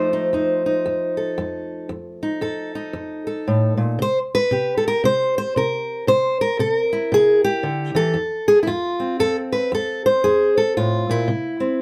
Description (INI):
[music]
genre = blues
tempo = 115 BPM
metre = 4/4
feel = swing 62% on 8ths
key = F mixolydian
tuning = A4 = 439 Hz
[part]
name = fingerpicked steel-string acoustic guitar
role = solo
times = 0.0-11.8 s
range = F2 to C5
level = -20 LUFS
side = equal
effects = none
[sound]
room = moderate studio reverb, RT60 0.6 s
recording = none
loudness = -20 LUFS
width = mono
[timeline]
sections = 0.0-11.8 A section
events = none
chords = 0.0 F7; 4.0 C7; 8.2 F; 11.3 C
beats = 0.34 0.86 1.38 | 1.91 2.43 2.95 3.47 | 3.99 4.51 5.03 5.55 | 6.08 6.60 7.12 7.64 | 8.16 8.68 9.21 9.73 | 10.25 10.77 11.30